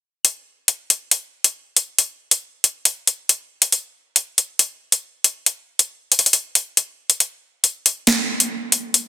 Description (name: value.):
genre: hip hop.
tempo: 138 BPM.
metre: 4/4.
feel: half-time.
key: none.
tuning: none.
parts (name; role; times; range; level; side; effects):
drill drum kit; drums; 0.2-9.0 s; hi-hat, snare drum; -14 LUFS; left 1 dB; overdrive.
room: light reverb.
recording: dense, heavily limited modern master.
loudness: -17 LUFS.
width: side -13 dB against mid.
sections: 0.2-9.1 A section.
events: kick muted 0.2-7.2.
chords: none.